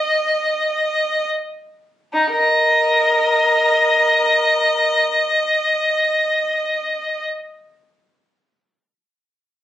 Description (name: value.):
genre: classical, free, expressive piece for unaccompanied violin.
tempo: free time.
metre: none.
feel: none.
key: unclear.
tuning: A4 = 440 Hz.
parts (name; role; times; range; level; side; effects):
rich violin; solo; 0.0-7.2 s; Eb4 to Eb5; -15 LUFS; equal; none.
room: light reverb.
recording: recorded on a phone in the room, club reverb.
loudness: -15 LUFS.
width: side -12 dB against mid.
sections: 0.0-2.1 A section; 2.1-7.8 B section.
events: slowing down 0.0-2.1.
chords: none.